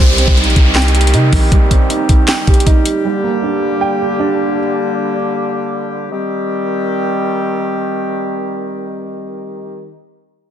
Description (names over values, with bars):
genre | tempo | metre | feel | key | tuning
hip hop, trap | 157 BPM | 4/4 | half-time | C minor | A4 = 441 Hz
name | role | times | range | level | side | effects
dark concert grand piano | accompaniment | 0.0-5.1 s | G3 to G5 | -18 LUFS | right 7 dB | none
mellow woodwind section | sustained chords | 0.0-9.9 s | D3 to G4 | -18 LUFS | left 2 dB | stereo widening
long sustained 808-style bass | bass | 0.0-1.5 s | Bb1 to C3 | -12 LUFS | equal | none
downlifter | sound effects | 0.0-3.0 s | none | -20 LUFS | equal | none
trap drum kit | drums | 0.2-2.9 s | handclaps, hi-hat, kick drum, snare drum | -11 LUFS | equal | vintage 12-bit sampler grit
room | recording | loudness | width
light reverb, small room ambience | dense, heavily limited modern master | -12 LUFS | side -10 dB against mid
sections
0.0-6.1 A section; 6.1-9.2 B section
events
none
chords
0.0 Cm; 3.0 Gm; 6.1 Cm